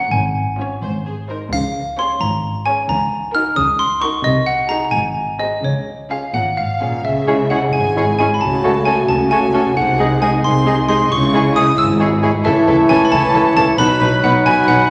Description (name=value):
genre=cinematic, playful, whimsical film cue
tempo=88 BPM (dotted quarters)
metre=6/8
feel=straight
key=Db major, C# minor from 7.0 s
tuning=A4 = 440 Hz
part: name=clear studio violin section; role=melody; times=0.0-14.8 s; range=Ab4 to Db5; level=-28 LUFS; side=equal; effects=none
part: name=xylophone with wooden mallets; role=melody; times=0.0-14.9 s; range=Db5 to F6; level=-21 LUFS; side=equal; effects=none
part: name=warm studio violin section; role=second line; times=0.0-14.9 s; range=F4 to E6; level=-30 LUFS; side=equal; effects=none
part: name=rich studio viola section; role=accompaniment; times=0.0-14.8 s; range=E3 to F#4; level=-28 LUFS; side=equal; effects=none
part: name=rich studio cello section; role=bass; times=0.1-14.8 s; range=Ab2 to Db3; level=-24 LUFS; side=equal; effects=none
part: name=warm studio double bass section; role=bass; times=0.1-14.8 s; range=Ab1 to Db2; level=-26 LUFS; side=equal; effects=none
part: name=triangle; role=percussion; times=1.5-2.4 s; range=none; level=-38 LUFS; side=equal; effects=none
part: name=warm French horn section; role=sustained chords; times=7.0-14.9 s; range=F#3 to G#4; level=-23 LUFS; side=equal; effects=none
part: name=clear clarinet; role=second line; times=7.3-14.9 s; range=D#4 to F#4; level=-25 LUFS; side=equal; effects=none
part: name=clear oboe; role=second line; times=7.3-14.9 s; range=B4 to D#5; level=-26 LUFS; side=equal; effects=none
part: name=mellow large flute ensemble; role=second line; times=7.3-14.9 s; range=F#5 to B5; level=-27 LUFS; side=equal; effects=none
part: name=mellow bassoon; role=accompaniment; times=7.3-14.9 s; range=E3 to A3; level=-25 LUFS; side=equal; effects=none
room=wet scoring stage reverb, RT60 1.6 s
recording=none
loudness=-16 LUFS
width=mono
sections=0.0-7.0 A section; 7.0-14.9 B section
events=none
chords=0.1 Db/Ab; 0.8 Ab; 1.5 Db; 2.9 Ebm7/Db; 4.2 Ab7/C; 4.9 Ab7; 5.6 Db; 7.0 C#m; 8.4 F#m/C#; 9.8 G#7/B#; 11.1 C#m; 12.4 A/C#; 13.8 B